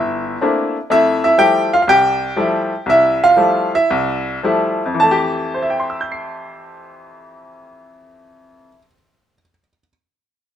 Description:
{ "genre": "solo jazz", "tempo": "106-125 BPM", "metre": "4/4", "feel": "swing 68% on 8ths", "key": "F major", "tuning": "A4 = 440 Hz", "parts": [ { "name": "bright upright piano", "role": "solo", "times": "0.0-9.9 s", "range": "G1 to C7", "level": "-14 LUFS", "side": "equal", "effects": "none" } ], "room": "light reverb", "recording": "none", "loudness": "-13 LUFS", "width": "side -10 dB against mid", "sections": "0.0-5.0 A section; 5.0-9.5 B section", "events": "slowing down 0.9-5.0", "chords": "0.0 C13; 0.9 Fmaj9", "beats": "0.42 | 0.90 1.38 1.87 2.36 | 2.86 3.37 3.89 4.43 | 4.98 5.55 6.11 6.67 | 7.24 7.80 8.36 8.93" }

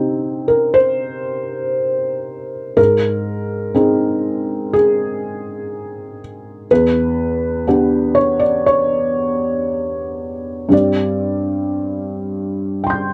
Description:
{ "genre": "neoclassical minimalist piano", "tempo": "57-62 BPM", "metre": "4/4", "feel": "rubato", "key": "C minor", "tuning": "A4 = 440 Hz", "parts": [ { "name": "felt-muted upright piano", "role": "solo", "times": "0.0-13.1 s", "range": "E2 to G6", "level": "-18 LUFS", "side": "equal", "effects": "none" } ], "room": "light reverb", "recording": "dry, close 1970s-style studio recording", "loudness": "-18 LUFS", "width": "mono", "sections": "0.0-13.1 A section", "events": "none", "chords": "0.0 Cm; 2.8 Ab; 6.7 Em7; 10.7 Gsus4", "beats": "0.75 1.78 | 2.78 3.76 4.74 5.72 | 6.70 7.67 8.66 9.67 | 10.72 11.77 12.82" }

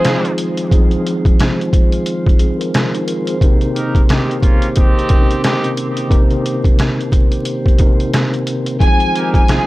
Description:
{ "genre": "hip hop, boom-bap hip-hop", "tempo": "89 BPM", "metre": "4/4", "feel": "swing 61% on 16ths", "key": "F minor", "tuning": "A4 = 439 Hz", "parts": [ { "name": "warm studio violin section", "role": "melody", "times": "0.0-0.2, 8.8-9.7 s", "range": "C5 to Ab5", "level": "-19 LUFS", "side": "left 1 dB", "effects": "high-pass filter, low-pass filter, analog delay" }, { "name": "mellow tine electric piano", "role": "accompaniment", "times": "0.0-9.7 s", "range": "C3 to C5", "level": "-19 LUFS", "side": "equal", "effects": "medium stereo tremolo, cassette tape, high-pass filter, low-pass filter" }, { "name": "mellow tonewheel organ", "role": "sustained chords", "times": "0.0-9.7 s", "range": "Eb3 to C5", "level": "-23 LUFS", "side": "equal", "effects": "slow rotary speaker, high-pass filter, low-pass filter" }, { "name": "trip hop sampler-style drum kit", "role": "drums", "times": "0.0-9.7 s", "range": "hi-hat, kick drum, rim click, snare drum", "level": "-13 LUFS", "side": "equal", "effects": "none" }, { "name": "mellow trumpet section", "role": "stabs", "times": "0.1-9.7 s", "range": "Bb3 to Bb4", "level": "-23 LUFS", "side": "right 2 dB", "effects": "high-pass filter, low-pass filter, analog delay" } ], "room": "little or no reverb", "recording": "dry, gritty hardware recording, vinyl crackle", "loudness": "-12 LUFS", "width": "side -18 dB against mid", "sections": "0.0-9.7 A section", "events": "none", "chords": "0.0 Fm7; 3.4 Cm7; 8.8 Fm7", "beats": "0.04 | 0.71 1.39 2.06 2.74 | 3.41 4.09 4.76 5.43 | 6.11 6.78 7.46 8.13 | 8.80 9.48" }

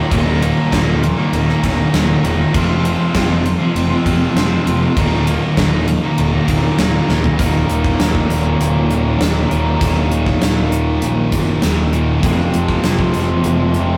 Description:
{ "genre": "rock, shoegaze and dream pop", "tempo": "99 BPM", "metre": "4/4", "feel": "straight", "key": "Eb dorian", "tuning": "A4 = 440 Hz", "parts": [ { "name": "biting overdriven guitar", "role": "riff", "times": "0.0-14.0 s", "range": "Eb2 to F4", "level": "-24 LUFS", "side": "equal", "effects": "none" }, { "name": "thick fuzz guitar", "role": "riff", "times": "0.0-14.0 s", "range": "Eb2 to F3", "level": "-21 LUFS", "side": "equal", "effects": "distortion" }, { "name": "tight distorted guitar", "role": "riff", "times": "0.0-14.0 s", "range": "Eb2 to F3", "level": "-24 LUFS", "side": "equal", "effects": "distortion" }, { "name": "fuzz fingered electric bass", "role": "bass", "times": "0.1-14.0 s", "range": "Eb1 to Bb1", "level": "-22 LUFS", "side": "equal", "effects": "overdrive" }, { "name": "gated 80s drum kit", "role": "drums", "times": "0.1-13.9 s", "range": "hi-hat, kick drum, ride cymbal, snare drum, toms", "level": "-22 LUFS", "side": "equal", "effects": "none" } ], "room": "wet studio reverb, RT60 0.6 s", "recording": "rough rehearsal-room recording, warm saturation", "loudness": "-16 LUFS", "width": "mono", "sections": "0.0-7.4 A section; 7.4-14.0 B section", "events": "drum fill 7.1-7.4", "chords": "0.0 Ebm; 2.5 Fm; 5.0 Ebm; 12.2 Fm", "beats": "| 0.11 0.72 1.33 1.93 | 2.54 3.15 3.75 4.36 | 4.96 5.57 6.17 6.78 | 7.38 7.99 8.60 9.20 | 9.81 10.41 11.02 11.62 | 12.23 12.84 13.44" }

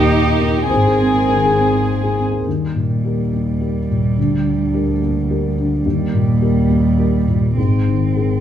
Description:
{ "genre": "neoclassical piano and strings", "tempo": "104 BPM", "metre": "3/4", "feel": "rubato", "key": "Eb major", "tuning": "A4 = 439 Hz", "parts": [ { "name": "warm chamber violin section", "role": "melody", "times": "0.0-2.2 s", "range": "G4 to Ab4", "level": "-18 LUFS", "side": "left 2 dB", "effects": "none" }, { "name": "dark cello", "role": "second line", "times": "0.0-8.4 s", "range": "G3 to Eb4", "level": "-21 LUFS", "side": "right 4 dB", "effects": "none" }, { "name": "felt-muted upright piano", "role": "accompaniment", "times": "0.0-8.4 s", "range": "D2 to Eb5", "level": "-18 LUFS", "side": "left 1 dB", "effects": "none" }, { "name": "pedal harmonium", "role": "sustained chords", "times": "0.0-2.5 s", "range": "Bb3 to C5", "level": "-26 LUFS", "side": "right 3 dB", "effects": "none" }, { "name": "dark double bass", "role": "bass", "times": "0.0-8.4 s", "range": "Ab1 to Eb2", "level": "-20 LUFS", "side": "equal", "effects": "none" } ], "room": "moderate large studio reverb, RT60 1.0 s", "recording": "band playing live in one room", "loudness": "-14 LUFS", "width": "side -10 dB against mid", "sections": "0.0-2.5 A section; 2.5-8.4 B section", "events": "none", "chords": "0.0 Eb; 0.7 Abadd9; 2.5 Eb; 4.2 Gm/D; 5.8 Eb; 7.6 Abadd9", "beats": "0.11 | 0.69 1.28 1.87 | 2.46 3.03 3.60 | 4.17 4.73 5.29 | 5.85 6.41 6.98 | 7.57 8.16" }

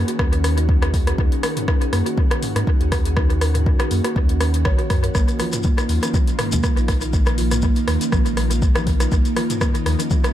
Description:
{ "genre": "afro house", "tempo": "121 BPM", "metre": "4/4", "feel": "swing 55% on 16ths", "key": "Eb minor", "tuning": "A4 = 440 Hz", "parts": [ { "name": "ethereal airy pad", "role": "sustained chords", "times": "0.0-10.3 s", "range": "Eb3 to Gb4", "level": "-27 LUFS", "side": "equal", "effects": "ensemble chorus, built-in reverb, sidechain pumping" }, { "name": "warm sub bass", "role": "bass", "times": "0.0-10.0 s", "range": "Bb1 to Ab2", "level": "-21 LUFS", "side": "equal", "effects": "sidechain pumping" }, { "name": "kalimba", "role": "arpeggios", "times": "0.1-10.2 s", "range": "F3 to Db5", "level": "-27 LUFS", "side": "right 2 dB", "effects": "sidechain pumping, dub echo" }, { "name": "deep house drum kit", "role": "drums", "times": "0.1-10.3 s", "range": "hi-hat, rim click, toms", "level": "-25 LUFS", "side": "equal", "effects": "overdrive, dub echo" }, { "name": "electronic kick drum", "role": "drums", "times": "0.2-10.2 s", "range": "none", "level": "-19 LUFS", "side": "equal", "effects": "overdrive" }, { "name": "congas", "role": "percussion", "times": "5.1-10.3 s", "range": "none", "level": "-30 LUFS", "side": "left 3 dB", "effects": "none" }, { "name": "shekere", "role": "percussion", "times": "5.1-10.3 s", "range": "none", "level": "-33 LUFS", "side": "left 3 dB", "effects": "dub echo" } ], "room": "digital ambience", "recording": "echo-heavy mix", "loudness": "-17 LUFS", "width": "side -12 dB against mid", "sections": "0.0-10.3 A section", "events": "none", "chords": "0.0 Ebm7; 5.2 Bbsus4", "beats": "0.19 0.69 | 1.18 1.68 2.17 2.67 | 3.17 3.66 4.16 4.65 | 5.15 5.65 6.14 6.64 | 7.13 7.63 8.12 8.62 | 9.12 9.61 10.11" }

